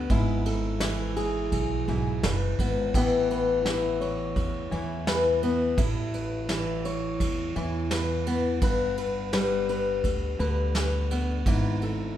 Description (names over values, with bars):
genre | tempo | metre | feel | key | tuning
acoustic folk duo or small band | 84 BPM | 4/4 | straight | A major | A4 = 440 Hz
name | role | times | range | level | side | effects
fingerpicked steel-string acoustic guitar | accompaniment | 0.0-12.2 s | G2 to C#5 | -27 LUFS | left 2 dB | none
upright bass | bass | 0.0-12.2 s | F#1 to E2 | -30 LUFS | right 1 dB | none
vintage brush drum kit | drums | 0.1-12.0 s | kick drum, ride cymbal, snare drum | -31 LUFS | right 1 dB | none
room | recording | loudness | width
light reverb | none | -24 LUFS | side -11 dB against mid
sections
0.0-12.2 A section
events
none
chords
0.1 E/G#; 2.9 Asus2; 8.6 G; 11.5 E/G#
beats
| 0.10 0.81 1.52 2.23 | 2.94 3.65 4.36 5.07 | 5.78 6.49 7.20 7.91 | 8.62 9.33 10.04 10.75 | 11.46 12.17